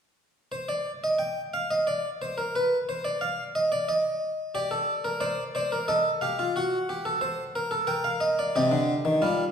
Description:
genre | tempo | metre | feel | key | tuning
classical, baroque-style 3-part fugue for harpsichord | 90 BPM | 3/4 | straight | unclear | A4 = 440 Hz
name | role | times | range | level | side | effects
harpsichord | solo | 0.5-9.5 s | C3 to G5 | -25 LUFS | equal | none
room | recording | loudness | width
wet recital hall reverb, RT60 1.5 s | heard from further back in the room | -25 LUFS | side -7 dB against mid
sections
0.5-9.5 A section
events
none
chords
0.5 N.C.; 4.6 Gm (rootless); 5.9 F9; 6.6 F#dim; 7.9 Gm/Bb; 8.6 Cm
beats
| 0.53 1.20 1.87 | 2.55 3.22 3.89 | 4.55 5.22 5.89 | 6.56 7.23 7.89 | 8.56 9.23

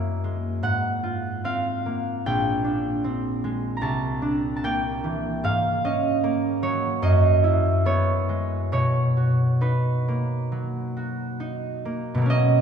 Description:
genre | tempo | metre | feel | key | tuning
classical, solo harp piece | 66-77 BPM | 4/4 | rubato | B lydian | A4 = 440 Hz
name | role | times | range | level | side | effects
concert harp | solo | 0.0-12.6 s | A#1 to A#5 | -21 LUFS | equal | none
room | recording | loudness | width
wet church reverb, RT60 3.6 s | minimal, uncompressed stereo recording | -22 LUFS | side -7 dB against mid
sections
0.0-12.3 A section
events
none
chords
0.0 F#13; 0.6 G#13; 2.3 A#13; 3.8 C13; 5.5 G#9sus4; 7.0 F#9sus4; 8.7 Bmaj7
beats
0.64 1.46 | 2.27 3.06 3.85 4.64 | 5.45 6.24 7.03 7.86 | 8.74 9.63 10.53 11.41 | 12.31

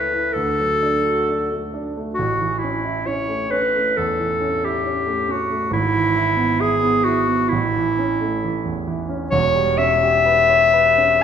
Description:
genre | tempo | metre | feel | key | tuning
classical, romantic duo for clarinet and grand piano | 66 BPM | 4/4 | rubato | unclear | A4 = 440 Hz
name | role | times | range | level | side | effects
clear clarinet | melody | 0.0-11.2 s | E4 to E5 | -18 LUFS | left 1 dB | none
warm concert grand piano | accompaniment | 0.0-11.2 s | E1 to C#5 | -23 LUFS | right 3 dB | none
room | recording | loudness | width
wet recital hall reverb, RT60 1.4 s | recorded in a church or concert hall | -17 LUFS | side -8 dB against mid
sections
0.0-11.2 A section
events
none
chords
0.3 D; 2.2 A; 5.7 E/G#; 7.5 A; 9.3 C#m7b5/E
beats
0.33 1.26 | 2.17 3.06 3.97 4.85 | 5.71 6.60 7.51 8.41 | 9.32 10.25 11.22

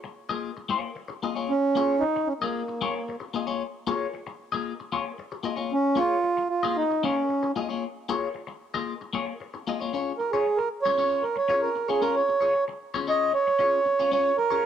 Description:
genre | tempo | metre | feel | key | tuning
funk | 114 BPM | 4/4 | straight | Bb minor | A4 = 441 Hz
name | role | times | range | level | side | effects
clean electric guitar | accompaniment | 0.0-14.7 s | Bb3 to Eb5 | -29 LUFS | left 7 dB | phaser
mellow accordion | melody | 1.5-14.7 s | Bb3 to Eb5 | -23 LUFS | right 3 dB | none
room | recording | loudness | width
light reverb, small room reverb | none | -24 LUFS | side -9 dB against mid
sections
0.0-9.9 A section; 9.9-14.7 B section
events
accordion solo 9.9-14.7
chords
0.0 Bbm7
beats
0.44 0.97 | 1.50 2.02 2.55 3.07 | 3.60 4.13 4.65 5.18 | 5.71 6.23 6.76 7.28 | 7.81 8.34 8.86 9.39 | 9.91 10.44 10.97 11.49 | 12.02 12.54 13.07 13.59 | 14.12 14.64

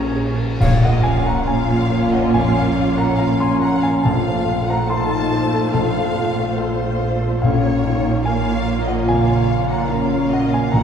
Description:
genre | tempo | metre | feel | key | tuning
cinematic, emotional film score for orchestra | 71 BPM | 4/4 | rubato | Bb minor | A4 = 440 Hz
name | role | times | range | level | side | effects
warm studio violin section | melody | 0.0-10.8 s | C5 to Bb5 | -34 LUFS | left 4 dB | none
warm studio violin section | second line | 0.0-10.8 s | Bb4 to A5 | -28 LUFS | left 3 dB | none
dark grand piano | accompaniment | 0.0-10.8 s | Bb1 to C6 | -22 LUFS | left 1 dB | none
warm studio viola section | accompaniment | 0.0-10.8 s | A3 to Gb4 | -25 LUFS | right 2 dB | none
dark French horn section | sustained chords | 0.0-10.8 s | Ab3 to F4 | -22 LUFS | equal | none
concert harp | arpeggios | 0.0-10.8 s | Bb2 to Db5 | -27 LUFS | left 3 dB | none
rich chamber cello section | bass | 0.0-10.8 s | Bb2 | -24 LUFS | right 3 dB | none
rich studio double bass section | bass | 0.0-10.8 s | Bb1 | -24 LUFS | right 3 dB | none
clash cymbals and concert bass drum | percussion | 0.6-2.3 s | none | -25 LUFS | equal | none
timpani | percussion | 0.6-10.8 s | Bb2 | -24 LUFS | equal | none
room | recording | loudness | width
wet scoring stage reverb, RT60 2.2 s | heard from further back in the room | -16 LUFS | side -8 dB against mid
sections
0.6-10.8 A section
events
band accent 0.6-1.5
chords
0.0 Bbm7; 0.6 Bbm; 4.0 F/Bb; 7.4 Bbm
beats
| 0.61 1.48 2.33 3.18 | 4.05 4.90 5.74 6.59 | 7.43 8.25 9.08 9.91 | 10.73

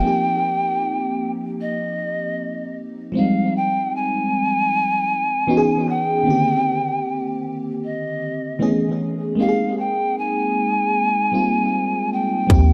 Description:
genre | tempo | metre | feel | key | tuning
contemporary R&B | 77 BPM | 4/4 | straight | unclear | A4 = 438 Hz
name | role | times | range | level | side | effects
mellow polished pan flute | melody | 0.0-12.7 s | Eb5 to Ab5 | -24 LUFS | equal | tape echo
FM electric piano with soft pad layer | accompaniment | 0.0-12.7 s | D3 to Ab4 | -24 LUFS | equal | chorus, phaser, tape echo
clean 808-style bass | bass | 12.5-12.7 s | Eb2 | -16 LUFS | equal | none
trap drum kit | drums | 12.5-12.7 s | hi-hat, kick drum | -18 LUFS | equal | none
room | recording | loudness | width
light reverb | echo-heavy mix | -21 LUFS | mono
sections
0.0-12.7 A section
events
none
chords
0.0 Eb69; 3.1 Fm7; 5.5 Dbm7; 6.3 Cm7; 8.6 Amaj9; 9.4 Abmaj9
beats
| 0.03 0.81 1.59 2.37 | 3.15 3.93 4.71 5.49 | 6.27 7.05 7.83 8.60 | 9.38 10.16 10.94 11.72 | 12.50

